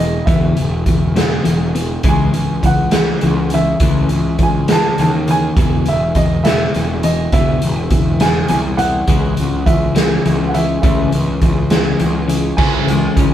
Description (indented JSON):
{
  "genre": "indie rock",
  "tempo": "68 BPM (dotted quarters)",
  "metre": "6/8",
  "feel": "straight",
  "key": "E major",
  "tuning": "A4 = 440 Hz",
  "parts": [
    { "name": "clear upright piano", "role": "melody", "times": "0.0-13.3 s", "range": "D#5 to A5", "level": "-21 LUFS", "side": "right 2 dB", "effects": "none" },
    { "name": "twelve-string electric guitar", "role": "riff", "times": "0.0-13.3 s", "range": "E2 to C#4", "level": "-18 LUFS", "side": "left 2 dB", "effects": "none" },
    { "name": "fuzz picked electric bass", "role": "bass", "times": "0.0-13.3 s", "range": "E1 to D#2", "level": "-20 LUFS", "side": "equal", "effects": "overdrive" },
    { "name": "raw garage drum kit", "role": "drums", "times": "0.3-13.3 s", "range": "crash cymbal, hi-hat, kick drum, snare drum", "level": "-16 LUFS", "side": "equal", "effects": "none" },
    { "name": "biting overdriven guitar", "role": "riff", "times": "12.6-13.3 s", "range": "C#3 to G#3", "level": "-20 LUFS", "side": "right 5 dB", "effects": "none" }
  ],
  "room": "light reverb",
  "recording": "band playing live in one room",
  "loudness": "-12 LUFS",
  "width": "side -11 dB against mid",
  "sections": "0.0-12.6 A section",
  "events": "none",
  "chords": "0.0 E5; 2.0 C#m; 3.8 A/C#; 5.6 E5; 9.1 C#m; 10.8 A/C#; 12.6 C#m"
}